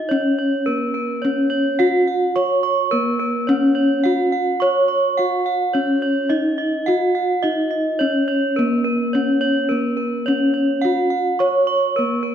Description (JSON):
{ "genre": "gamelan", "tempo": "106 BPM", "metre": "4/4", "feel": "straight", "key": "unclear", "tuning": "A4 = 437 Hz", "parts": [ { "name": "gamelan-type bronze metallophone", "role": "melody", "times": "0.0-12.3 s", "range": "Cb4-45c to Db5", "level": "-18 LUFS", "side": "left 1 dB", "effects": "none" }, { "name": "gamelan-type bronze metallophone", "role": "arpeggios", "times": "0.0-12.3 s", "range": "Cb5-45c to Db6", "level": "-21 LUFS", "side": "right 3 dB", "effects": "none" } ], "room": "wet recital hall reverb, RT60 1.8 s", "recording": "none", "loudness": "-16 LUFS", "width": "side -9 dB against mid", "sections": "0.1-12.3 A section", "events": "none", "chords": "none" }